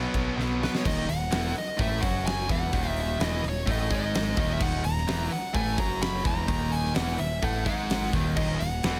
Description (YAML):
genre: quiet-loud alternative rock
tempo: 128 BPM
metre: 4/4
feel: straight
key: Eb phrygian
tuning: A4 = 439 Hz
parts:
  - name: cranked stack guitar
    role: riff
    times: 0.0-9.0 s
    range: Eb2 to B3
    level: -34 LUFS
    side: equal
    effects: overdrive
  - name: sludgy distorted guitar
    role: riff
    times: 0.0-0.8, 8.4-9.0 s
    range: Eb2 to B3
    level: -38 LUFS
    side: equal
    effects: overdrive
  - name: thick fuzz guitar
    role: riff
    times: 0.0-9.0 s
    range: Eb2 to B3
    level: -36 LUFS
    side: equal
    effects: distortion
  - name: growling picked electric bass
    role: bass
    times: 0.0-9.0 s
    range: Eb1 to B1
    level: -34 LUFS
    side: equal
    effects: overdrive
  - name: huge arena drum kit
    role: drums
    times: 0.1-9.0 s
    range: crash cymbal, hi-hat, kick drum, snare drum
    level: -32 LUFS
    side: equal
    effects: none
  - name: nasal lead guitar with a parked wah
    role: melody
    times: 0.6-9.0 s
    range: B4 to Cb6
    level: -34 LUFS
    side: equal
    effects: overdrive, tape echo
room: light reverb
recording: none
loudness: -27 LUFS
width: mono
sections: 0.8-9.0 A section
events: drum fill 0.4-0.8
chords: 0.0 B5; 0.8 Ebm